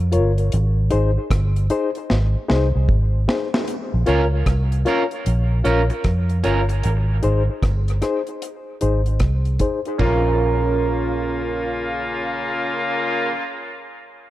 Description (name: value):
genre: dub reggae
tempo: 76 BPM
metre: 4/4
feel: swing 64% on 16ths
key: Bb dorian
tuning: A4 = 441 Hz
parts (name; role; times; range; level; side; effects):
- vintage muted fingered electric bass; bass; 0.0-13.3 s; G1 to F2; -19 LUFS; equal; none
- reed electric piano; stabs; 0.1-13.3 s; Eb4 to Db5; -24 LUFS; left 4 dB; overdrive, fast tremolo, low-pass filter, dub echo
- deep reggae drum kit; drums; 0.1-10.2 s; china cymbal, hi-hat, kick drum, rim click, snare drum, toms; -23 LUFS; equal; none
- electric guitar at the edge of break-up; accompaniment; 4.1-13.5 s; Db4 to Bb4; -25 LUFS; right 6 dB; lush chorus, low-pass filter, dub echo
- clear horn section; second line; 10.0-13.3 s; Db3 to F4; -24 LUFS; left 1 dB; dub echo
room: light reverb, studio reverb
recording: echo-heavy mix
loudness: -18 LUFS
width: side -15 dB against mid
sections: 0.0-3.7 A section; 3.7-10.0 B section; 10.0-13.2 C section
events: break 0.0-3.7; drum fill 2.1-3.7; filter sweep 3.7-10.0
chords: 0.0 Bbm; 0.5 Ab; 3.7 Bbm; 6.8 Ab; 10.0 Bbm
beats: | 0.52 1.30 2.09 2.88 | 3.67 4.46 5.25 6.04 | 6.83 7.62 8.41 9.20 | 9.99 10.78 11.57 12.37